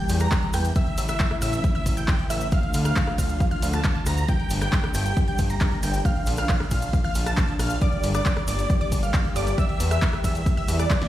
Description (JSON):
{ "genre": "uplifting trance", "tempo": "136 BPM", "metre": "4/4", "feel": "straight", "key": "unclear", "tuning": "A4 = 441 Hz", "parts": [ { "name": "big supersaw lead", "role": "melody", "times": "0.0-11.1 s", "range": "D5 to Bb5", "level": "-30 LUFS", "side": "right 2 dB", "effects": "phaser, sidechain pumping, dub echo" }, { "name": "wide unison pluck", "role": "second line", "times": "0.0-11.1 s", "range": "D6 to Bb6", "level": "-36 LUFS", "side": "moving between left 4 dB and right 6 dB", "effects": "auto-pan, sidechain pumping, dub echo" }, { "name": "dark studio string section", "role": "sustained chords", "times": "0.0-11.1 s", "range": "C#3 to G4", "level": "-31 LUFS", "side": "left 2 dB", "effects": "sidechain pumping" }, { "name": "fat analog bass", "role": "bass", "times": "0.1-10.9 s", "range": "G1 to E2", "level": "-25 LUFS", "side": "equal", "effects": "sidechain pumping" }, { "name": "punchy analog drum machine", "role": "drums", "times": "0.1-11.1 s", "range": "handclaps, hi-hat, ride cymbal, rim click, snare drum", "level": "-32 LUFS", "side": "equal", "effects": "overdrive" }, { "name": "cabasa", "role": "percussion", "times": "0.1-11.0 s", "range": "none", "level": "-39 LUFS", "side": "right 1 dB", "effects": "none" }, { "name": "electronic kick drum", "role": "drums", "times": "0.3-11.0 s", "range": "none", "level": "-23 LUFS", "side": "equal", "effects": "overdrive" } ], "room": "little or no reverb", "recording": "played on a big sound system in a bare room, stone room reverb", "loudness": "-21 LUFS", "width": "side -13 dB against mid", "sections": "0.0-11.1 A section", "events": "none", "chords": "0.0 Edim; 0.8 A; 2.5 Dm; 4.3 Gm; 6.1 Bb; 7.8 Gm; 9.6 Edim" }